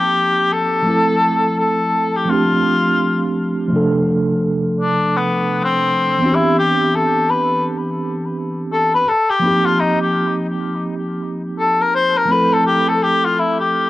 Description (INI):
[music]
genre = hip hop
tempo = 84 BPM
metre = 4/4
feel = swing 62% on 16ths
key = D dorian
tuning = A4 = 440 Hz
[part]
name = mellow cor anglais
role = melody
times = 0.0-13.9 s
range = B3 to C5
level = -16 LUFS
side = left 2 dB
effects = analog delay
[part]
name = mellow tine electric piano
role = accompaniment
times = 0.0-13.9 s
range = C3 to A4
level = -18 LUFS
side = right 2 dB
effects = medium stereo tremolo, cassette tape, plate reverb
[sound]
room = wet small room reverb, RT60 0.6 s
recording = home recording on cassette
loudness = -14 LUFS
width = side -16 dB against mid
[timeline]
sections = 0.0-3.7 A section; 3.7-13.9 B section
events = cor anglais solo 3.7-13.9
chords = 0.0 Eb69; 0.9 Fmaj7; 2.3 G9sus4; 3.7 Dm7; 6.2 Cmaj9; 9.4 Eb69; 12.3 Fmaj7